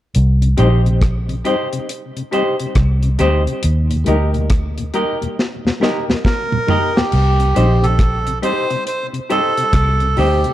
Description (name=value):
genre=roots reggae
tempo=69 BPM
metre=4/4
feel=swing 63% on 16ths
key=C dorian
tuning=A4 = 440 Hz
part: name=deep reggae drum kit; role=drums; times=0.1-10.5 s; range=crash cymbal, hi-hat, kick drum, rim click, snare drum, toms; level=-19 LUFS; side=equal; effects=none
part: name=vintage muted fingered electric bass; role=bass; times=0.2-10.4 s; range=Bb1 to Eb2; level=-15 LUFS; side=equal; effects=none
part: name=mellow tonewheel organ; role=accompaniment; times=0.4-10.5 s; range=Eb2 to Eb4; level=-25 LUFS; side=left 3 dB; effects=chorus vibrato, stopped rotary speaker, tape echo
part: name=semi-hollow electric guitar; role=accompaniment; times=0.6-10.4 s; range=G4 to Eb5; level=-24 LUFS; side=right 4 dB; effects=tape echo
part: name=warm upright piano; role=stabs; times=0.6-10.5 s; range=Eb4 to C5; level=-24 LUFS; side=left 5 dB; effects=none
part: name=melodica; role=melody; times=6.3-10.5 s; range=G4 to C5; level=-19 LUFS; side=right 2 dB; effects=tape echo
room=light reverb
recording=dark, warm production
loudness=-14 LUFS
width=side -13 dB against mid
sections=0.1-7.1 A section; 7.1-10.5 B section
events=drum fill 5.4-7.1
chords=0.1 Cm; 3.6 Eb; 7.1 Cm